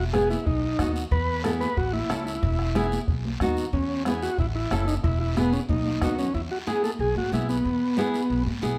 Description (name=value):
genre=latin, cumbia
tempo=184 BPM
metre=4/4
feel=straight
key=E major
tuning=A4 = 439 Hz
part: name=overdriven combo organ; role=melody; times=0.0-8.4 s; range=B3 to B4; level=-29 LUFS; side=equal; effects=none
part: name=upright bass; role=bass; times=0.0-8.8 s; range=E1 to G#2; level=-31 LUFS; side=equal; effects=none
part: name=nylon-string guitar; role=accompaniment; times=0.1-8.8 s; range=B3 to A4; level=-32 LUFS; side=equal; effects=none
part: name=bombo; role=percussion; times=0.1-6.2 s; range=none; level=-32 LUFS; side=equal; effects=none
part: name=congas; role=percussion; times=0.1-8.8 s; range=none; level=-37 LUFS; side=equal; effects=none
part: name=guiro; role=percussion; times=0.1-8.8 s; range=none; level=-44 LUFS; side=equal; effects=none
room=moderate large studio reverb, RT60 1.2 s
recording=none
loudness=-25 LUFS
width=mono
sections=0.0-6.3 A section; 6.3-8.8 B section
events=drum fill 5.7-6.3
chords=0.5 B; 1.1 E; 1.8 A; 2.4 E; 3.1 B; 3.7 E6; 4.4 A; 5.0 E; 5.7 B; 6.3 E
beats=0.14 0.47 0.79 | 1.12 1.45 1.77 2.10 | 2.42 2.75 3.08 3.40 | 3.73 4.06 4.38 4.71 | 5.04 5.36 5.69 6.02 | 6.34 6.67 7.00 7.32 | 7.65 7.98 8.30 8.63